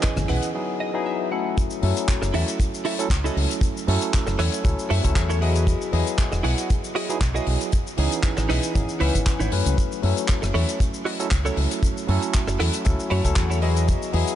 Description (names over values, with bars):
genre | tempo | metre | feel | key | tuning
nu-disco, nu disco | 117 BPM | 4/4 | swing 54% on 16ths | F# dorian | A4 = 441 Hz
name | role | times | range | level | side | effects
barky tine electric piano | accompaniment | 0.0-14.4 s | E3 to D#5 | -27 LUFS | moving between left 9 dB and right 8 dB | overdrive, auto-pan, analog delay
direct-recorded clean electric guitar | riff | 0.0-14.3 s | D#4 to A5 | -30 LUFS | right 4 dB | analog chorus, analog delay
damped 70s drum kit | drums | 0.0-14.4 s | handclaps, hi-hat, rim click, shaker | -30 LUFS | left 2 dB | studio reverb
kick drum | drums | 0.0-14.0 s | none | -22 LUFS | equal | studio reverb
fingered electric bass with an envelope filter | bass | 0.2-14.2 s | E1 to F#2 | -22 LUFS | equal | sidechain pumping
room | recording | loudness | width
light reverb, small room ambience | nothing above 10.5 kHz | -20 LUFS | side -11 dB against mid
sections
0.0-1.6 A section; 1.6-14.4 B section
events
break 0.5-1.6; clean electric guitar fill 0.5-1.6, 12.9-13.9; drop 1.6-14.4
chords
0.0 C#m9; 0.5 Emaj9; 1.6 F#m7; 5.4 Emaj9; 7.7 C#m9; 9.8 F#m7; 13.6 Emaj9